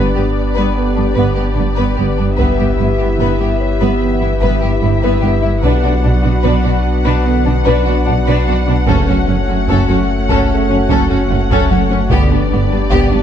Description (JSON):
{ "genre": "cinematic, hybrid orchestral and electronic film score", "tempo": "74 BPM", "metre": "4/4", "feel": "straight", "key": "F# phrygian", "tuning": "A4 = 440 Hz", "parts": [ { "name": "warm symphonic violin section", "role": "melody", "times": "0.0-13.2 s", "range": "D5 to F#5", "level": "-24 LUFS", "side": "left 5 dB", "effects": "none" }, { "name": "warm symphonic violin section", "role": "second line", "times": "0.0-13.2 s", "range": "B3 to B4", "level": "-22 LUFS", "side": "left 4 dB", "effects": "none" }, { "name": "rich symphonic viola section", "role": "accompaniment", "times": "0.0-13.2 s", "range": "B3 to D4", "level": "-22 LUFS", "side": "right 2 dB", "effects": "none" }, { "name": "chorused pulse-width pad", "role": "sustained chords", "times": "0.0-13.2 s", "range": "A3 to C#5", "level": "-20 LUFS", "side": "left 1 dB", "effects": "none" }, { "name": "punchy sub bass", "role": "bass", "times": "0.0-13.2 s", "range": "F#1 to B1", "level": "-18 LUFS", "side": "equal", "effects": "none" }, { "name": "rich symphonic cello section", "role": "bass", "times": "0.0-13.2 s", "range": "F#2 to B2", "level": "-20 LUFS", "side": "right 4 dB", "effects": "none" }, { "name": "rich symphonic double bass section", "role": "bass", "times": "0.0-13.0 s", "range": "F#1 to B1", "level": "-20 LUFS", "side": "right 3 dB", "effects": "none" }, { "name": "warm grand piano", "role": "texture", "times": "0.0-13.2 s", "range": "F#4 to B5", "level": "-33 LUFS", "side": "left 2 dB", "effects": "none" }, { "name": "dark trombone section", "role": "sustained chords", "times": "0.8-12.4 s", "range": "C#3 to B3", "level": "-22 LUFS", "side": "right 2 dB", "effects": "none" }, { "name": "taiko ensemble", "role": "drums", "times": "2.4-4.0, 8.9-13.2 s", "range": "none", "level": "-19 LUFS", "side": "equal", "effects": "none" } ], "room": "moderate scoring stage reverb, RT60 1.9 s", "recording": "dark, warm production, faint mains hum", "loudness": "-12 LUFS", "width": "side -9 dB against mid", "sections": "0.0-13.2 A section", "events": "build-up 0.0-13.2", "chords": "0.0 G; 2.4 Em/G; 5.6 Bm; 8.9 F#m; 12.1 G", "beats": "0.77 1.58 | 2.39 3.20 4.01 4.82 | 5.63 6.44 7.25 8.06 | 8.87 9.69 10.50 11.31 | 12.12 12.93" }